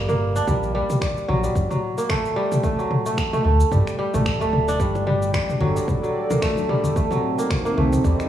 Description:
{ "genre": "organic downtempo", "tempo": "111 BPM", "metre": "4/4", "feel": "swing 56% on 16ths", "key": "G harmonic minor", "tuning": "A4 = 440 Hz", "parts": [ { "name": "kora", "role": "arpeggios", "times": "0.0-8.3 s", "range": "F#3 to D4", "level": "-23 LUFS", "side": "equal", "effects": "cassette tape, analog delay" }, { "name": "round analog bass", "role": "bass", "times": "0.0-8.1 s", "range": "D1 to G2", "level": "-22 LUFS", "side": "equal", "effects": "tube saturation" }, { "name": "deep house drum kit", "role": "drums", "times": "0.1-8.3 s", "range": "finger snaps, shaker, toms", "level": "-26 LUFS", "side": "equal", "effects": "studio reverb" }, { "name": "electronic kick drum", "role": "drums", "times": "0.5-8.2 s", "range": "none", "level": "-27 LUFS", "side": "equal", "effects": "overdrive, studio reverb" }, { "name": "warm analog pad", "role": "sustained chords", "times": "4.9-8.3 s", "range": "C4 to G5", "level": "-25 LUFS", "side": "right 1 dB", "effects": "chorus, sidechain pumping, cassette tape" }, { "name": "bongos and congas", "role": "percussion", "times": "5.0-8.3 s", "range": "none", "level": "-27 LUFS", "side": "left 2 dB", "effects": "none" } ], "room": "light reverb", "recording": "home recording on cassette, small room ambience", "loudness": "-19 LUFS", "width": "side -11 dB against mid", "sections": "0.0-8.3 A section", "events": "none", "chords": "0.5 Gmadd9/Bb; 2.6 Dsus4; 4.8 Gsus2; 7.0 Cm" }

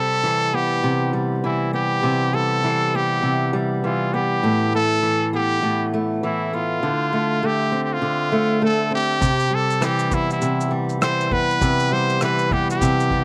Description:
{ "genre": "acoustic pop", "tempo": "100 BPM", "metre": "4/4", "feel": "swing 60% on 16ths", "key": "C major", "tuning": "A4 = 440 Hz", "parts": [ { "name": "brilliant trumpet", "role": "melody", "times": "0.0-13.2 s", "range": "E4 to C5", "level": "-24 LUFS", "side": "equal", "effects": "none" }, { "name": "fingerpicked steel-string acoustic guitar", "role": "accompaniment", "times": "0.0-13.2 s", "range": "A2 to C4", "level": "-23 LUFS", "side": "equal", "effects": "none" }, { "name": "unplugged drum kit", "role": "drums", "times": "9.2-13.2 s", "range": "kick drum, rim click, shaker", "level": "-28 LUFS", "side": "equal", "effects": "none" } ], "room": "little or no reverb", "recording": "recorded outdoors, with no room sound", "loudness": "-21 LUFS", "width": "mono", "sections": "0.0-13.2 A section", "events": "none", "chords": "0.0 Cmaj7; 4.4 Asus2; 6.8 Dm7; 9.2 Cmaj7" }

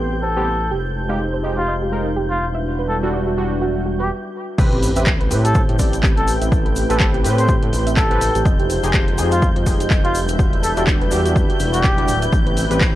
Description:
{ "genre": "deep house", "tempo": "124 BPM", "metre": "4/4", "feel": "swing 57% on 16ths", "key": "unclear", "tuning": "A4 = 440 Hz", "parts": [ { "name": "warm analog pad", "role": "sustained chords", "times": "0.0-13.0 s", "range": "G3 to E5", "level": "-28 LUFS", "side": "left 1 dB", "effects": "chorus, sidechain pumping" }, { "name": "warm analog keys", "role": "stabs", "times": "0.0-12.8 s", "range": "G3 to D5", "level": "-25 LUFS", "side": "right 1 dB", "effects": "chorus, sidechain pumping, low-pass filter, tape echo" }, { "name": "smooth gliding synth bass", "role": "bass", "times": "0.0-13.0 s", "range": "D1 to A2", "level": "-22 LUFS", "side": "equal", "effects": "sidechain pumping" }, { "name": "soft string machine", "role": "texture", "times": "0.0-13.0 s", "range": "G6", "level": "-31 LUFS", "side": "left 1 dB", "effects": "ensemble chorus, sidechain pumping" }, { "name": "warbly tape-like pad", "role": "texture", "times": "0.0-13.0 s", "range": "G3 to G5", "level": "-30 LUFS", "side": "equal", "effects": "chorus, built-in reverb, sidechain pumping" }, { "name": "soft round pluck", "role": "arpeggios", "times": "0.1-12.9 s", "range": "F#4 to F5", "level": "-28 LUFS", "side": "right 3 dB", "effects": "chorus, sidechain pumping, tape echo" }, { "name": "trumpet with cup mute", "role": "melody", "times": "0.2-12.2 s", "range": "F4 to C5", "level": "-24 LUFS", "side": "left 1 dB", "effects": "tape echo" }, { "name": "electronic kick drum", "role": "drums", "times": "4.6-12.9 s", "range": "none", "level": "-18 LUFS", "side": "equal", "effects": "overdrive, vintage 12-bit sampler grit, studio reverb" }, { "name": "house drum kit", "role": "drums", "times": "4.6-12.9 s", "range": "crash cymbal, handclaps, hi-hat", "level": "-26 LUFS", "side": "equal", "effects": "vintage 12-bit sampler grit, studio reverb" }, { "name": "tube shaker", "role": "percussion", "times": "4.6-12.9 s", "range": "none", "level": "-32 LUFS", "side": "left 3 dB", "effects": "none" }, { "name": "sub drop", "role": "sound effects", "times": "4.6-6.5 s", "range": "none", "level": "-29 LUFS", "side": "equal", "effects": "none" } ], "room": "little or no reverb", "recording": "dry, gritty hardware recording, cassette tape", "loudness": "-15 LUFS", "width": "side -14 dB against mid", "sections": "0.0-4.6 A section; 4.6-13.0 B section", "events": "stop 4.1-4.6; drop 4.6-13.0; impact 4.6-6.5", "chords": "0.0 Am9; 0.7 Fm9; 2.4 Em9; 4.6 Am9; 8.5 Fm9; 10.1 Em9; 12.3 Am9" }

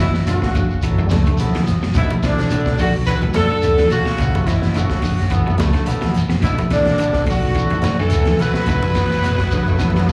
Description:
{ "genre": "afrobeat", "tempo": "107 BPM", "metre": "4/4", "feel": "swing 54% on 16ths", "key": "B minor", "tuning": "A4 = 440 Hz", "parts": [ { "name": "warm horn section", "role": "melody", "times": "0.0-10.1 s", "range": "D4 to B4", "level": "-23 LUFS", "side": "equal", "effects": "slapback echo" }, { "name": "raspy tenor saxophone", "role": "second line", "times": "0.0-10.1 s", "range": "A2 to F#3", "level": "-30 LUFS", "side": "equal", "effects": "slapback echo" }, { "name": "electric guitar at the edge of break-up", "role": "arpeggios", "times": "0.0-10.1 s", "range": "B2 to B3", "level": "-25 LUFS", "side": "equal", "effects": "none" }, { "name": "hollow-body short-scale fingered electric bass", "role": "bass", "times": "0.0-10.1 s", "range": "F#1 to F#2", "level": "-23 LUFS", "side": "equal", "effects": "none" }, { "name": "crunchy breakbeat drum kit", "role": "drums", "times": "0.1-10.1 s", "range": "hi-hat, kick drum, snare drum", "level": "-26 LUFS", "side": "equal", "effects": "none" }, { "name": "shekere", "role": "percussion", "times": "0.1-10.1 s", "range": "none", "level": "-31 LUFS", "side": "equal", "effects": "none" }, { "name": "percussive tonewheel organ", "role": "accompaniment", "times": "0.3-10.0 s", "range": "F#3 to B4", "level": "-32 LUFS", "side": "equal", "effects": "overdrive, slapback echo" }, { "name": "congas", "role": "percussion", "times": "0.6-10.1 s", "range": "none", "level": "-26 LUFS", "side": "equal", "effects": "none" }, { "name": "clear trombone section", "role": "second line", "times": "0.8-1.8, 5.3-10.1 s", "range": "F#3 to B3", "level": "-30 LUFS", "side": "equal", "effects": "slapback echo" } ], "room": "light reverb, small room ambience", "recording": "live gig heard through the venue's PA, club reverb", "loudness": "-17 LUFS", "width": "mono", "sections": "0.0-10.1 A section", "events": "drum fill 9.8-10.1", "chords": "0.0 F#7sus4; 2.0 Bm7; 4.2 F#7sus4; 6.4 Bm7; 8.7 F#7sus4" }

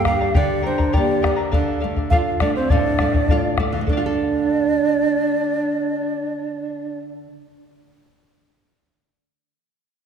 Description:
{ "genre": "andean folk, Andean ensemble", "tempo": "102 BPM", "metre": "2/4", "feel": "straight", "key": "D minor", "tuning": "A4 = 440 Hz", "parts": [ { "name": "bright large quena", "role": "melody", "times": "0.0-7.0 s", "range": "C5 to F5", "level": "-24 LUFS", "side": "right 4 dB", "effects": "none" }, { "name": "reedy pan flute", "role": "second line", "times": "0.0-7.0 s", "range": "C4 to G4", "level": "-24 LUFS", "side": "equal", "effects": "none" }, { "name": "charango", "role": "accompaniment", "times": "0.0-7.6 s", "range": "G4 to Bb5", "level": "-27 LUFS", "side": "left 3 dB", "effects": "none" }, { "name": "nylon-string guitar", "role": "accompaniment", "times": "0.0-7.6 s", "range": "G2 to Bb4", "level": "-26 LUFS", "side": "right 4 dB", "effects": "none" }, { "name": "bombo", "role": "percussion", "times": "0.1-4.2 s", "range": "none", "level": "-21 LUFS", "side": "left 1 dB", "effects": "none" } ], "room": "wet concert hall reverb, RT60 2.1 s", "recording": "recorded in a church or concert hall", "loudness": "-17 LUFS", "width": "side -7 dB against mid", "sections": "0.0-3.9 A section; 3.9-6.2 B section", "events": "none", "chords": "0.0 Gm; 1.5 Dm" }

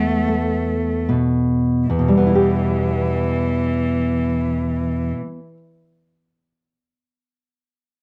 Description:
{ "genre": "romantic duo for cello and classical guitar", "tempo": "40 BPM", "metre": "4/4", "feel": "rubato", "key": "E minor", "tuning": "A4 = 440 Hz", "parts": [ { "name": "rich cello", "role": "melody", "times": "0.0-5.1 s", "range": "E3 to A3", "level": "-28 LUFS", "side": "equal", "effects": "plate reverb" }, { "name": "nylon-string guitar", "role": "accompaniment", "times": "0.0-5.6 s", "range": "E2 to G4", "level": "-20 LUFS", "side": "equal", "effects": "none" } ], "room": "moderate studio ambience, RT60 0.5 s", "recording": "dark, warm production", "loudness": "-20 LUFS", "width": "mono", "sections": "0.0-1.9 A section; 1.9-8.0 B section", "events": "slowing down 0.0-1.9", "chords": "0.0 B7(no3)/E; 1.9 Em" }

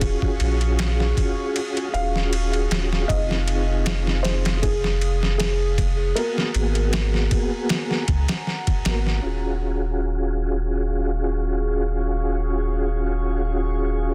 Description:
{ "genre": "trip hop", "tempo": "78 BPM", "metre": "4/4", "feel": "swing 54% on 16ths", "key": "Eb minor", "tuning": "A4 = 440 Hz", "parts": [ { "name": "felt-muted upright piano", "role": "melody", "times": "0.0-8.4 s", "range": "Ab4 to F5", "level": "-32 LUFS", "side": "equal", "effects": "tape echo" }, { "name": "mellow tonewheel organ", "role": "accompaniment", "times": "0.0-14.1 s", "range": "Bb3 to Bb4", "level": "-29 LUFS", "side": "equal", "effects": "chorus vibrato, fast rotary speaker, tremolo, vintage 12-bit sampler grit, tape echo" }, { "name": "deep dark ambient pad", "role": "sustained chords", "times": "0.0-14.1 s", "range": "Ab4 to Eb6", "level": "-36 LUFS", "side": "equal", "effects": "chorus, built-in reverb" }, { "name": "soft dub sub bass", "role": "bass", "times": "0.0-14.1 s", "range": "Eb1 to Db2", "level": "-25 LUFS", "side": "equal", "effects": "none" }, { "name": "boom bap sampler-style drum kit", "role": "drums", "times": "0.0-9.2 s", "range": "kick drum, ride cymbal, snare drum", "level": "-28 LUFS", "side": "equal", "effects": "overdrive" } ], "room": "little or no reverb", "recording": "dense, heavily limited modern master", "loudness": "-23 LUFS", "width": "mono", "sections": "0.0-9.2 A section; 9.2-14.1 B section", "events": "none", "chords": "0.0 Ebm11; 3.1 Fm7; 6.2 Abm9; 9.2 Ebm11" }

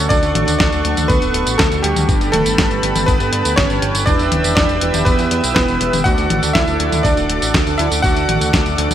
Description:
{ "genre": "italo disco", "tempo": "121 BPM", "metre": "4/4", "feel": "straight", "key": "D major", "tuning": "A4 = 445 Hz", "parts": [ { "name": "bright electric grand piano", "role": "melody", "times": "0.0-8.5 s", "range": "G3 to F#5", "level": "-19 LUFS", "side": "right 1 dB", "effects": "ping-pong delay" }, { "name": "warm analog pad", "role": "sustained chords", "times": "0.0-8.9 s", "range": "A4 to E6", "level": "-22 LUFS", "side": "right 1 dB", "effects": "chorus, tremolo" }, { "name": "mellow synth brass", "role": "stabs", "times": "0.0-8.9 s", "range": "D3 to B4", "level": "-24 LUFS", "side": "right 2 dB", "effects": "chorus" }, { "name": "fat analog bass", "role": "bass", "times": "0.0-8.9 s", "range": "D1 to G2", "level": "-21 LUFS", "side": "equal", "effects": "none" }, { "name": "clean 12-bit digital drum machine", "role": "drums", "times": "0.1-8.9 s", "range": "hi-hat, snare drum, tambourine, toms", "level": "-19 LUFS", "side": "left 1 dB", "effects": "none" }, { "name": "electronic kick drum", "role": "drums", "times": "0.1-8.6 s", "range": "none", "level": "-18 LUFS", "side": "equal", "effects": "overdrive" } ], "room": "moderate plate reverb, RT60 2.6 s", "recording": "bright 1980s-style digital production", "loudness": "-13 LUFS", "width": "side -10 dB against mid", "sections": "0.0-8.9 A section", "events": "none", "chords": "0.0 D; 2.1 Gadd9; 4.1 Em; 6.1 D" }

